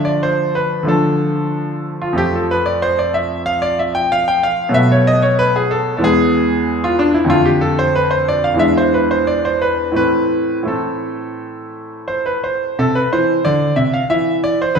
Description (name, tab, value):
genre	classical, baroque-style suite movement for grand piano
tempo	85-95 BPM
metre	4/4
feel	rubato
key	A minor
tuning	A4 = 440 Hz
part	bright concert grand piano	solo	0.0-14.8 s	E2 to G5	-14 LUFS	equal	none
room	wet recital hall reverb, RT60 1.5 s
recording	heard from further back in the room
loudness	-14 LUFS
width	side -6 dB against mid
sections	0.0-12.8 A section; 12.8-14.8 B section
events	none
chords	0.0 Dm; 2.2 F; 4.7 B5; 6.0 E; 7.3 Dm/F; 8.6 E7; 10.0 Am; 12.8 Cmaj13; 14.1 Cadd9